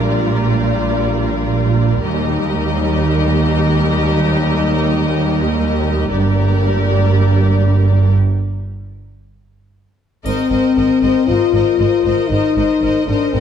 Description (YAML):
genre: cinematic, epic orchestral film score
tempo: free time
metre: none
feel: none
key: unclear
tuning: A4 = 435 Hz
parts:
  - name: warm symphonic violin section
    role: second line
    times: 0.0-13.4 s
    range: Bb4 to Eb5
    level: -24 LUFS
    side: left 4 dB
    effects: none
  - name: clear symphonic viola section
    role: accompaniment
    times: 0.0-13.4 s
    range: G3 to Bb4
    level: -23 LUFS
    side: right 1 dB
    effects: none
  - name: mellow French horn section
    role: sustained chords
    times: 0.0-13.4 s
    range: G3 to F4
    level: -18 LUFS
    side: left 6 dB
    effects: none
  - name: rich symphonic double bass section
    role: bass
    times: 0.0-13.4 s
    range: G1 to Eb2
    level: -18 LUFS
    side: right 3 dB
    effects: none
  - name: warm symphonic cello section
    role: bass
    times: 0.0-13.4 s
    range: Eb2 to Bb2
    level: -20 LUFS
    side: right 3 dB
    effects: none
  - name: rich studio violin section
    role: melody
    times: 10.2-13.4 s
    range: Eb5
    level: -26 LUFS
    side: left 4 dB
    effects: none
  - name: triangle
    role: percussion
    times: 10.3-11.2 s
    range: none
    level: -43 LUFS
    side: left 6 dB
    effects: none
room: moderate scoring stage reverb, RT60 1.6 s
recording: dark, warm production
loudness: -13 LUFS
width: side -8 dB against mid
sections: 0.0-10.3 A section; 10.3-13.4 B section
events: build-up 0.0-10.3; break 8.2-10.3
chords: 0.0 Bb6; 2.1 Eb; 6.1 Gm; 10.3 Abadd9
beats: free time